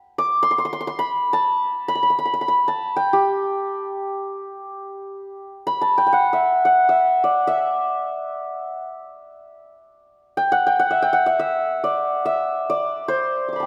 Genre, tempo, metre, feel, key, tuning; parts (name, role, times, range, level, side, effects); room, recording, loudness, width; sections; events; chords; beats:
indian classical; free time; G raga bilaval; A4 = 440 Hz
santur; solo; 0.2-13.7 s; G4 to D6; -21 LUFS; equal
wet recital hall reverb, RT60 1.4 s; -20 LUFS; mono
0.0-5.1 A section; 5.1-13.7 A section
free time